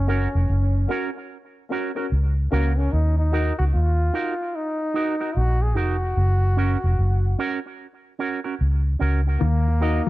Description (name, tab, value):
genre	reggae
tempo	74 BPM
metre	4/4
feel	swing 63% on 16ths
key	F# major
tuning	A4 = 440 Hz
part	bright trombone	melody	0.0-10.1 s	A#3 to G#4	-28 LUFS	equal	low-pass filter, tape echo
part	vintage muted fingered electric bass	bass	0.0-10.0 s	E#1 to D#2	-19 LUFS	equal	none
part	electric guitar with an envelope filter	accompaniment	0.1-10.0 s	C#4 to D#5	-28 LUFS	right 6 dB	tape echo
part	dark upright piano	stabs	0.1-3.5, 9.8-10.0 s	C#4 to A#4	-31 LUFS	left 5 dB	tape echo
part	mellow electric guitar	riff	9.4-10.1 s	D#3	-26 LUFS	left 7 dB	tape echo
room	small room reverb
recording	dark, warm production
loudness	-20 LUFS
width	side -17 dB against mid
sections	0.0-9.4 A section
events	none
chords	0.0 F#; 2.9 D#m; 6.2 F#; 9.4 D#m